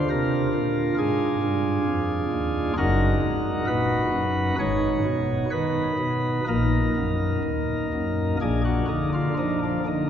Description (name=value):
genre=classical, chorale-style piece for pipe organ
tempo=61-70 BPM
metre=4/4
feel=rubato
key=Eb minor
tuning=A4 = 440 Hz
part: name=pipe organ, sparkling flutes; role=solo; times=0.0-10.1 s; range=Gb1 to Db5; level=-22 LUFS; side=equal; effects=none
room=wet cathedral reverb, RT60 5.0 s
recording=heard from further back in the room, nothing above 7.7 kHz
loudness=-22 LUFS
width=side -9 dB against mid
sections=0.0-10.1 A section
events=none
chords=0.0 Ddim; 2.8 Ebm/Gb; 4.6 Abm; 6.5 Ebm/Bb; 8.4 Bb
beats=0.11 0.97 1.86 | 2.77 3.67 4.58 5.52 | 6.48 7.44 8.40 9.37